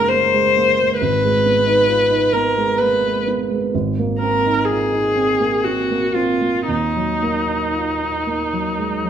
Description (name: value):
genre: classical, impressionist duo for viola and grand piano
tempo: 56-68 BPM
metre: 3/4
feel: rubato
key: unclear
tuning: A4 = 442 Hz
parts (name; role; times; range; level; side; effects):
- rich viola; melody; 0.0-9.1 s; Eb4 to C5; -17 LUFS; left 2 dB; none
- warm grand piano; accompaniment; 0.0-9.1 s; Gb1 to F4; -20 LUFS; right 4 dB; none
room: moderate recital hall reverb, RT60 1.4 s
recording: close, detailed microphones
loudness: -16 LUFS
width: side -8 dB against mid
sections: 0.0-9.1 A section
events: none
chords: 0.0 Gb69; 1.0 Abm6; 3.7 Abadd9; 6.7 Ebmadd9